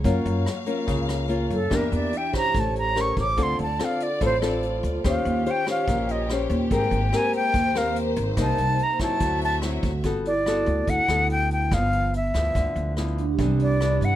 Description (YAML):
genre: bossa nova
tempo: 144 BPM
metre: 4/4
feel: straight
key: G major from 10.0 s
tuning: A4 = 440 Hz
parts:
  - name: nylon-string guitar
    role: accompaniment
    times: 0.0-14.2 s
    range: G2 to C5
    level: -28 LUFS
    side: left 3 dB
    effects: none
  - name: warm studio string section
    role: sustained chords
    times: 0.0-10.0 s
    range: Bb3 to F5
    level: -33 LUFS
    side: equal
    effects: none
  - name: upright bass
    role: bass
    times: 0.0-14.2 s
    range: G1 to G2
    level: -26 LUFS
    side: right 1 dB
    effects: none
  - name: vintage brush drum kit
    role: drums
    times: 0.0-14.1 s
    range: hi-hat, kick drum, rim click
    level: -31 LUFS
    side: equal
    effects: none
  - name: silver concert flute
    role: melody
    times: 1.5-14.2 s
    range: A4 to D6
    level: -25 LUFS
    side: equal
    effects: none
  - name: vibraphone with soft mallets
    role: accompaniment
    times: 2.3-5.1, 9.2-14.2 s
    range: D4 to C5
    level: -30 LUFS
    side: right 6 dB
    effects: none
room: little or no reverb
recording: close, detailed microphones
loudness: -21 LUFS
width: side -12 dB against mid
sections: 0.0-10.0 A section; 10.0-14.2 B section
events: flute solo 0.0-10.0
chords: 0.0 Gbmaj7; 1.7 Em7b5; 2.5 A7b9; 3.4 Dm7; 5.0 Eb13; 6.7 Abmaj9; 8.4 Cm7; 9.2 D9; 10.0 Gmaj9; 11.7 G6; 13.4 Cmaj9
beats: | 0.04 0.46 0.88 1.29 | 1.71 2.13 2.54 2.96 | 3.38 3.79 4.21 4.63 | 5.04 5.46 5.88 6.29 | 6.71 7.13 7.54 7.96 | 8.38 8.79 9.21 9.63 | 10.04 10.46 10.88 11.30 | 11.71 12.13 12.55 12.96 | 13.38 13.80